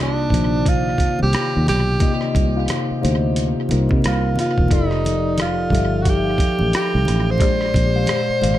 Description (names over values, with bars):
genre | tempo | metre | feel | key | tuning
R&B, neo-soul | 89 BPM | 4/4 | swing 61% on 16ths | C minor | A4 = 444 Hz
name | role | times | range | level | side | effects
breathy tenor saxophone | melody | 0.0-8.6 s | D4 to C5 | -22 LUFS | right 2 dB | tape echo
mellow tine electric piano | accompaniment | 0.0-8.6 s | Bb2 to F5 | -22 LUFS | left 3 dB | phaser, tape echo
fingered electric bass | bass | 0.0-8.6 s | E1 to C3 | -20 LUFS | right 1 dB | none
dusty soul sampler-style drum kit | drums | 0.3-8.6 s | hi-hat, kick drum, rim click | -22 LUFS | equal | none
congas | percussion | 0.3-8.6 s | none | -30 LUFS | right 2 dB | none
room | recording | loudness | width
digital ambience | echo-heavy mix | -16 LUFS | side -13 dB against mid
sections
0.0-8.6 A section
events
none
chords
0.0 Cm11; 4.7 F13; 7.4 Bb13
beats
0.66 1.33 | 2.01 2.68 3.35 4.03 | 4.70 5.38 6.05 6.73 | 7.40 8.07